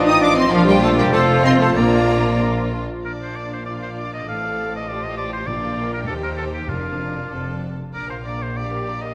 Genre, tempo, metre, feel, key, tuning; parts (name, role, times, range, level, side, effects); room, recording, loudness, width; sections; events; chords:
quick classical-period movement for symphony orchestra; 98 BPM; 2/4; rubato; Bb major; A4 = 442 Hz
bright oboe; second line; 0.0-9.1 s; F4 to F5; -30 LUFS; equal
dark clarinet; second line; 0.0-3.0 s; F4 to Bb4; -29 LUFS; equal
mellow concert flute; second line; 0.0-2.4 s; Bb4 to G5; -28 LUFS; equal
rich chamber violin section; second line; 0.0-9.1 s; C4 to D5; -32 LUFS; equal
mellow bassoon; accompaniment; 0.0-2.7 s; F3; -30 LUFS; equal
warm studio viola section; accompaniment; 0.0-9.1 s; F3 to A4; -29 LUFS; equal
mellow French horn section; sustained chords; 0.0-2.7 s; F3 to Eb4; -26 LUFS; equal
dark trumpet section; stabs; 0.0-2.4 s; F4 to Eb5; -25 LUFS; equal
clear chamber double bass section; bass; 0.0-9.1 s; F1 to Eb2; -28 LUFS; equal
warm symphonic cello section; bass; 0.0-9.1 s; Eb2 to Eb4; -27 LUFS; equal
dark studio violin section; melody; 0.1-9.1 s; F5 to Eb6; -28 LUFS; equal
timpani; percussion; 5.5-7.3 s; F2 to Bb2; -37 LUFS; equal
wet concert hall reverb, RT60 1.9 s; -20 LUFS; mono
0.0-3.0 A section; 3.0-9.1 A section
0.0 F7/A; 0.5 Bb; 1.1 F; 1.8 Bb; 4.3 F/A; 5.5 Bb; 6.1 Eb; 6.7 Bb/F; 7.9 Bb